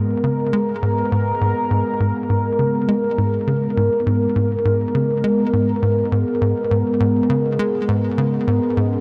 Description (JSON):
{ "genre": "ambient, sequencer-driven space music", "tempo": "102 BPM", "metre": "4/4", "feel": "straight", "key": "G# minor", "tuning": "A4 = 440 Hz", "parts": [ { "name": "sweeping resonant pad", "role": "sustained chords", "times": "0.0-9.0 s", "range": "G#3 to A#4", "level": "-22 LUFS", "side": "equal", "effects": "chorus" }, { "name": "tight sequencer bass", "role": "riff", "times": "0.0-9.0 s", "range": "G#2 to G#3", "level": "-22 LUFS", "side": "equal", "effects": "delay" } ], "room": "wet huge ambient reverb, RT60 7.6 s", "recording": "none", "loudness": "-19 LUFS", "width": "mono", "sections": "0.0-9.0 A section", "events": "none", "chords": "0.0 G#madd9" }